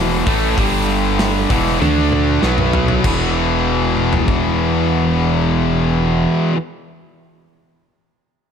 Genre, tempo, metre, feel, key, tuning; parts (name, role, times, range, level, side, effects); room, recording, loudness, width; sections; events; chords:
hard rock; 97 BPM; 4/4; straight; A4 = 440 Hz
overdriven semi-hollow guitar; riff; 0.0-6.6 s; E2 to D4; -20 LUFS; right 12 dB
tight distorted guitar; riff; 0.0-6.6 s; E2 to D4; -20 LUFS; left 9 dB; distortion
tight distorted guitar; riff; 0.0-6.6 s; E2 to D4; -22 LUFS; left 1 dB; distortion
smooth synth bass; bass; 0.0-6.3 s; E1 to D2; -21 LUFS; equal
gated 80s drum kit; drums; 0.3-4.4 s; crash cymbal, hi-hat, kick drum, snare drum, toms; -21 LUFS; equal
studio reverb; -14 LUFS; side -7 dB against mid
0.0-3.0 A section; 3.0-5.5 B section
drum fill 1.8-3.0
0.0 E5; 0.6 G5; 1.5 E5; 1.8 D5; 2.4 B5; 3.0 E5